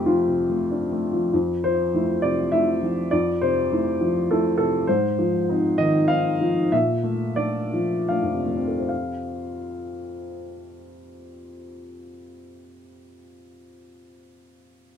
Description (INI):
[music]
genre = neoclassical minimalist piano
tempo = 74-104 BPM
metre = 3/4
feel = rubato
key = F major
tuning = A4 = 440 Hz
[part]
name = warm upright piano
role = solo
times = 0.0-15.0 s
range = F2 to F5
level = -21 LUFS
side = left 1 dB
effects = none
[sound]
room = light reverb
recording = minimal, uncompressed stereo recording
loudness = -20 LUFS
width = side -8 dB against mid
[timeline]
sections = 0.0-1.3 A section; 1.3-8.9 B section; 8.9-13.6 C section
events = slowing down 4.0-8.9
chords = 0.0 F6; 1.3 Fmaj7; 4.9 Ab6; 6.7 Bbmaj7; 8.9 F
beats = 0.07 0.70 | 1.32 1.93 2.52 | 3.12 3.71 4.29 | 4.87 5.48 6.09 | 6.72 7.38 8.11 | 8.89 9.67 10.45 | 11.22 12.01 12.80